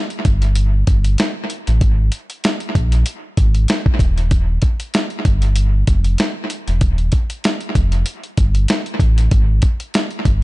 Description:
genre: hip hop, boom-bap hip-hop.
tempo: 96 BPM.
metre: 4/4.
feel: swing 55% on 16ths.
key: unclear.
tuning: A4 = 441 Hz.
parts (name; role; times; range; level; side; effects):
dusty soul sampler-style drum kit; drums; 0.1-10.4 s; hi-hat, kick drum, snare drum; -17 LUFS; equal; dub echo.
sub bass with octave; bass; 0.3-10.4 s; Eb1 to Bb1; -15 LUFS; equal; none.
room: little or no reverb.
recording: echo-heavy mix, nothing above 10.8 kHz.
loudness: -14 LUFS.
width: side -20 dB against mid.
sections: 0.0-10.4 A section.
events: none.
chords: none.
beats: 0.56 1.19 | 1.81 2.44 3.06 3.69 | 4.31 4.94 5.56 6.19 | 6.81 7.44 8.06 8.69 | 9.31 9.94.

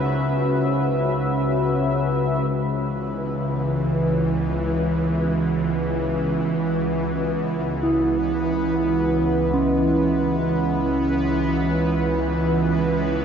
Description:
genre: dark ambient drone.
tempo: free time.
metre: none.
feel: none.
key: C# minor.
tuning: A4 = 438 Hz.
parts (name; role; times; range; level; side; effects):
sweeping resonant pad; sustained chords; 0.0-13.2 s; C#4 to E5; -28 LUFS; left 1 dB; chorus.
quartz singing bowl; arpeggios; 0.0-13.2 s; C#3 to E4; -25 LUFS; equal; diffuse ambient delay.
bowed-like drone; drone; 0.0-13.2 s; C#2 to E3; -23 LUFS; right 1 dB; built-in reverb.
bubbling stepped-filter texture; texture; 3.0-13.2 s; B3 to B4; -28 LUFS; left 1 dB; chorus, built-in reverb.
room: wet huge ambient reverb, RT60 7.9 s.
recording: nothing above 7.5 kHz.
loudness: -19 LUFS.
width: side -7 dB against mid.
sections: 0.0-2.5 A section; 2.5-13.2 B section.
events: fade-in on analog synth pad 2.5-13.2.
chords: 0.0 C#m.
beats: free time.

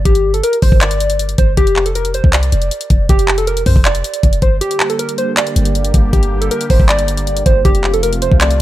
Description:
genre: hip hop, trap.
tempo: 158 BPM.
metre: 4/4.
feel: half-time.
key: G minor.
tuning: A4 = 440 Hz.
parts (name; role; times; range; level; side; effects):
clean 808-style bass; bass; 0.0-8.6 s; F1 to F2; -16 LUFS; equal; none.
warbly lo-fi synth keys; melody; 0.1-8.6 s; G4 to D5; -17 LUFS; right 1 dB; chorus, low-pass filter, tape echo.
trap drum kit; drums; 0.1-8.6 s; handclaps, hi-hat, kick drum; -14 LUFS; equal; none.
sweeping resonant pad; sustained chords; 4.6-8.6 s; C3 to G4; -22 LUFS; right 2 dB; chorus.
room: little or no reverb.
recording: none.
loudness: -11 LUFS.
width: side -14 dB against mid.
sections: 0.0-8.6 A section.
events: break 4.6-5.4.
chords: 0.0 G5; 1.6 F5; 4.6 Gm; 7.7 F.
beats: | 0.06 0.43 0.81 1.20 | 1.57 1.95 2.33 2.71 | 3.09 3.47 3.85 4.23 | 4.61 4.99 5.37 5.75 | 6.13 6.51 6.89 7.27 | 7.65 8.03 8.41.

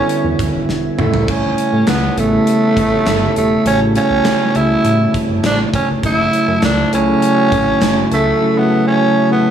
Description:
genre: 1980s-style pop.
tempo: 101 BPM.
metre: 4/4.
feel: straight.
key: unclear.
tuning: A4 = 440 Hz.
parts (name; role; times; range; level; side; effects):
growling tenor saxophone; melody; 0.0-9.5 s; A3 to E4; -16 LUFS; right 2 dB; tape echo.
bell-like tine electric piano; accompaniment; 0.0-9.5 s; C#3 to F#4; -16 LUFS; equal; none.
ethereal airy pad; sustained chords; 0.2-9.5 s; E4 to A5; -26 LUFS; right 4 dB; ensemble chorus, built-in reverb.
chorused synth bass; bass; 0.0-8.3 s; E1 to A2; -21 LUFS; right 1 dB; none.
gated 80s drum kit; drums; 0.1-8.3 s; hi-hat, kick drum, snare drum, splash cymbal, tambourine, toms; -20 LUFS; right 1 dB; gated reverb.
group handclap; percussion; 1.9-8.0 s; none; -35 LUFS; right 5 dB; none.
room: moderate plate reverb, RT60 2.9 s.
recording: studio ambience.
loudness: -12 LUFS.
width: side -9 dB against mid.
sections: 0.0-9.5 A section.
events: drum fill 0.7-1.3.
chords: 0.0 Em7; 1.0 A7; 6.0 F#m7.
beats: 0.10 0.69 | 1.28 1.88 2.47 3.07 | 3.66 4.25 4.85 5.44 | 6.04 6.63 7.22 7.82 | 8.41 9.01.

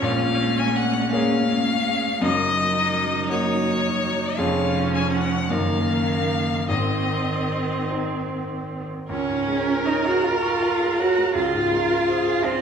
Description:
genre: classical, slow romantic movement for piano quartet.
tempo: 49-56 BPM (dotted quarters).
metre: 6/8.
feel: rubato.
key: Db major.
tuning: A4 = 440 Hz.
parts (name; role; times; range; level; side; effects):
warm violin; melody; 0.0-12.6 s; C5 to Ab5; -26 LUFS; left 5 dB; none.
warm cello; second line; 0.0-12.6 s; Eb3 to Gb4; -24 LUFS; right 3 dB; none.
clear grand piano; accompaniment; 0.0-12.6 s; F1 to Db6; -25 LUFS; left 1 dB; none.
warm viola; accompaniment; 0.0-12.6 s; Bb3 to Bb4; -28 LUFS; right 2 dB; none.
room: wet recital hall reverb, RT60 1.6 s.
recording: recorded in a church or concert hall, studio ambience.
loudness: -20 LUFS.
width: side -7 dB against mid.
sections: 0.0-9.1 A section; 9.1-12.6 B section.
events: none.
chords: 0.0 Bbm7; 2.2 Ebm/Gb; 4.4 Db/F; 5.5 Ebm/Gb; 6.7 Ab; 9.1 Db; 11.3 Fm/Db.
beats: | 0.03 1.13 | 2.22 3.31 | 4.39 5.51 | 6.70 7.90 | 9.09 10.23 | 11.35 12.44.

